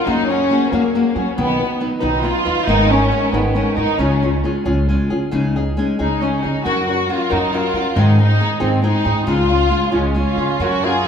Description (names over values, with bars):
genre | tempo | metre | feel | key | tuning
mexican folk, mariachi | 91 BPM (dotted quarters) | 6/8 | rubato | F# major | A4 = 440 Hz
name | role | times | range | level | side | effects
dark studio violin section | melody | 0.0-11.1 s | A#3 to G#4 | -19 LUFS | equal | none
nylon-string guitar | accompaniment | 0.0-11.1 s | G#2 to B4 | -19 LUFS | left 2 dB | none
upright bass | bass | 0.1-11.0 s | G#1 to F#3 | -20 LUFS | equal | none
warm trumpet | second line | 10.0-11.1 s | G#3 to E#4 | -22 LUFS | right 4 dB | none
room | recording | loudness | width
wet concert hall reverb, RT60 1.8 s | minimal, uncompressed stereo recording | -15 LUFS | side -7 dB against mid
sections
0.1-11.1 A section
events
none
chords
0.1 F#add9; 1.4 B; 2.7 G#madd9; 4.0 C#; 5.3 C#sus2; 6.7 F#; 8.0 G#; 9.3 C#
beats
| 0.07 0.72 | 1.37 2.03 | 2.68 3.34 | 4.00 4.66 | 5.33 5.99 | 6.65 7.31 | 7.96 8.61 | 9.27 9.93 | 10.60